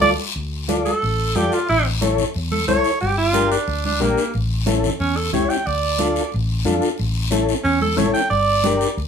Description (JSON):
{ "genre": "latin, cumbia", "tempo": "181 BPM", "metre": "4/4", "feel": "straight", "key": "D harmonic minor", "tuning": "A4 = 440 Hz", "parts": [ { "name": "bright alto saxophone", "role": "melody", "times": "0.0-9.0 s", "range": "Bb3 to G5", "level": "-20 LUFS", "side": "right 3 dB", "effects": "none" }, { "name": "combo organ", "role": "accompaniment", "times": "0.0-8.9 s", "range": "C#4 to D5", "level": "-21 LUFS", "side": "left 4 dB", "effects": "none" }, { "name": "hollow-body short-scale fingered electric bass", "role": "bass", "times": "0.0-9.1 s", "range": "G1 to F2", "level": "-23 LUFS", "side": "left 1 dB", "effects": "none" }, { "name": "congas", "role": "percussion", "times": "0.0-9.1 s", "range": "none", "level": "-26 LUFS", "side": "right 2 dB", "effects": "none" }, { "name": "guiro", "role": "percussion", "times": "0.0-9.1 s", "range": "none", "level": "-29 LUFS", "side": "left 5 dB", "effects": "none" } ], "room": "wet studio ambience, RT60 0.4 s", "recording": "band playing live in one room", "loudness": "-17 LUFS", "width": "side -7 dB against mid", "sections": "0.4-9.1 A section", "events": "band accent 0.0-0.4; alto saxophone solo 0.4-9.1", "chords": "0.4 Dm; 1.7 A; 3.0 Gm; 4.3 A7; 5.7 Dm; 7.0 A; 8.3 Gm" }